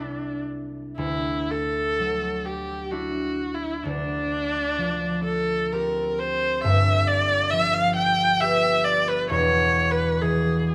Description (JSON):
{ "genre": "classical, impressionist duo for viola and harp", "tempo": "54-70 BPM", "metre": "3/4", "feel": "rubato", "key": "unclear", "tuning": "A4 = 440 Hz", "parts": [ { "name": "rich viola", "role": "melody", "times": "0.0-10.7 s", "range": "D4 to G5", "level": "-25 LUFS", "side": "equal", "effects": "none" }, { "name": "concert harp", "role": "accompaniment", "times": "0.0-10.7 s", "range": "E1 to G4", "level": "-28 LUFS", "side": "equal", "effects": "none" } ], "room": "light reverb", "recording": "close, detailed microphones", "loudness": "-23 LUFS", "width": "mono", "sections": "0.0-10.7 A section", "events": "none", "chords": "0.0 C69; 1.0 Dadd9; 3.9 Dm7; 6.6 G7; 9.3 E5" }